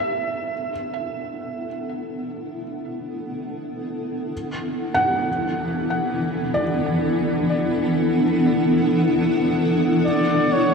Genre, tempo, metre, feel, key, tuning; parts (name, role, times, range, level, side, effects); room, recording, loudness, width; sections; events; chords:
ambient; free time; A4 = 445 Hz
granular cloud pad; sustained chords; 0.0-10.7 s; E3 to F#5; -21 LUFS; equal; built-in reverb, shimmer reverb
felt-muted upright piano; arpeggios; 0.0-10.1 s; D5 to F#5; -26 LUFS; right 1 dB; shimmer reverb, ping-pong delay
mellow flugelhorn; melody; 10.1-10.7 s; C#5 to D5; -20 LUFS; left 1 dB; shimmer reverb
wet cathedral reverb, RT60 5.2 s; in a vast, echoing space; -20 LUFS; side -5 dB against mid
0.0-10.7 A section
fade-in on ambient pad 0.0-10.7
0.0 E5; 4.3 Dadd9/E; 10.0 E5